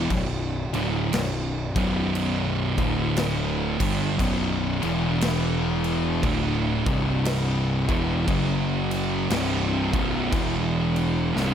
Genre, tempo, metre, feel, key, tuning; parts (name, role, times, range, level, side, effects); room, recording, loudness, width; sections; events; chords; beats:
stoner and doom metal; 59 BPM; 4/4; swing 62% on 8ths; B minor; A4 = 442 Hz
thick fuzz guitar; riff; 0.0-11.5 s; B1 to G3; -27 LUFS; left 9 dB; distortion
thick fuzz guitar; riff; 0.0-11.5 s; B1 to G3; -26 LUFS; right 7 dB; distortion
fuzz picked electric bass; bass; 0.0-11.5 s; B0 to G1; -29 LUFS; equal; overdrive
big rock drum kit; drums; 0.1-11.5 s; crash cymbal, kick drum, snare drum; -30 LUFS; equal
light reverb, studio ambience; -22 LUFS; side -8 dB against mid
0.0-11.5 A section
drum fill 11.4
0.0 Bm; 2.7 D5; 3.7 Bm; 4.7 E5; 6.2 D5; 6.7 C5; 7.8 E5; 8.3 F#5; 9.3 B5; 10.3 E5
| 0.11 1.13 2.15 3.17 | 4.19 5.21 6.24 7.26 | 8.28 9.30 10.33 11.35